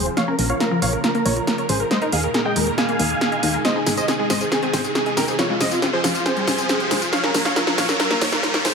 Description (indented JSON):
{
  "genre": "uplifting trance",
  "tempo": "138 BPM",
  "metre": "4/4",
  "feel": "straight",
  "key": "unclear",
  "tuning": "A4 = 440 Hz",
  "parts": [
    { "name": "big supersaw lead", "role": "melody", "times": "0.0-8.7 s", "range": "F4 to Ab5", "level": "-24 LUFS", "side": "right 1 dB", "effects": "low-pass filter, tape echo" },
    { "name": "bright baby grand piano", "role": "second line", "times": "0.0-8.7 s", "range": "F4 to Ab5", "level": "-29 LUFS", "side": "right 1 dB", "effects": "none" },
    { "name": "analog string pad", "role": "sustained chords", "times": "0.0-8.7 s", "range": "Bb2 to G5", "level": "-28 LUFS", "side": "right 2 dB", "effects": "ensemble chorus" },
    { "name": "analog pluck", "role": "arpeggios", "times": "0.0-8.7 s", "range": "F3 to Eb5", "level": "-27 LUFS", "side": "left 3 dB", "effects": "chorus, tape echo" },
    { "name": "solid FM bass", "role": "bass", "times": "0.0-8.7 s", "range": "Eb1 to Eb2", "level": "-26 LUFS", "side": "equal", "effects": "none" },
    { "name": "riser", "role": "sound effects", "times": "0.0-8.7 s", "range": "none", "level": "-27 LUFS", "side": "equal", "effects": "none" },
    { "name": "punchy analog drum machine", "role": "drums", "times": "0.1-8.7 s", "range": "hi-hat, snare drum, tambourine", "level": "-22 LUFS", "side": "equal", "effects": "overdrive" }
  ],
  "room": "moderate lush hall reverb, RT60 2.1 s",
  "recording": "high-pass filter",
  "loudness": "-18 LUFS",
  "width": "side -5 dB against mid",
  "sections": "0.0-8.7 A section",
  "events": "build-up 0.0-8.7; drum fill 0.0-8.7; riser 0.0-8.7; filter sweep on supersaw synth 0.0-8.7; filter sweep on synth arpeggio sound 0.0-8.7; filter sweep 0.0-8.7",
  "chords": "0.2 Bbm; 1.9 Ebsus4; 3.6 Ab; 5.4 Fmadd9; 7.1 Bbm",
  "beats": "| 0.17 0.61 1.04 1.48 | 1.91 2.35 2.78 3.21 | 3.65 4.08 4.52 4.95 | 5.39 5.82 6.26 6.69 | 7.13 7.56 8.00 8.43"
}